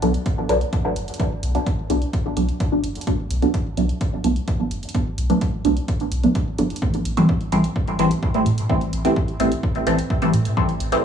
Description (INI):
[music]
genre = dub techno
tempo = 128 BPM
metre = 4/4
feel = straight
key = A dorian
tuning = A4 = 440 Hz
[part]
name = filtered dub chord stab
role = stabs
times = 0.0-11.0 s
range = E3 to D4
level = -21 LUFS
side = equal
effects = phaser, sidechain pumping, dub echo
[part]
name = pure sine sub bass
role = bass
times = 0.0-10.9 s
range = F#1 to A2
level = -23 LUFS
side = equal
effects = tube saturation, sidechain pumping
[part]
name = electronic hi-hat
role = drums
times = 0.0-11.0 s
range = none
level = -37 LUFS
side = right 3 dB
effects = none
[part]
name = electronic kick drum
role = drums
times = 0.3-10.7 s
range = none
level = -24 LUFS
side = equal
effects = none
[sound]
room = light reverb, digital ambience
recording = dry, gritty hardware recording, cassette tape, studio ambience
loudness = -19 LUFS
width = side -8 dB against mid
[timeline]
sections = 0.0-6.8 A section; 6.8-11.0 A section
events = filter sweep on synth stab 0.0-6.8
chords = 0.0 Bm7; 6.8 Am7